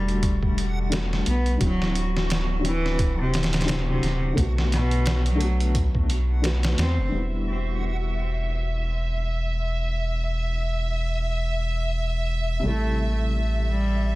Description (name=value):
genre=trip hop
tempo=87 BPM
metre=4/4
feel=swing 57% on 16ths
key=E minor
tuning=A4 = 440 Hz
part: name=warm cello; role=melody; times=0.0-7.1, 12.7-14.2 s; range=B2 to C4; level=-29 LUFS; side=equal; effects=tape echo
part: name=felt-muted upright piano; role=accompaniment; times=0.0-14.2 s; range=C3 to B4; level=-30 LUFS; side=left 2 dB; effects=tremolo, tape echo
part: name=round analog bass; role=bass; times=0.0-14.2 s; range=D1 to E2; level=-24 LUFS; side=equal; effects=none
part: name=backwards swelling texture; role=texture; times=0.1-7.1 s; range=F#4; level=-38 LUFS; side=right 1 dB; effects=built-in reverb
part: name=trip hop sampler-style drum kit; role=drums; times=0.1-7.0 s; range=hi-hat, kick drum, snare drum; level=-26 LUFS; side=equal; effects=none
part: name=clear studio violin section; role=sustained chords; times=7.1-14.2 s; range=E5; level=-32 LUFS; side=equal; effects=low-pass filter
room=small room ambience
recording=dense, heavily limited modern master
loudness=-22 LUFS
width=side -19 dB against mid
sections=0.0-7.1 A section; 7.1-14.2 B section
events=none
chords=0.0 Em11; 1.6 D9; 4.4 Bm7; 7.1 Em7; 12.6 Am7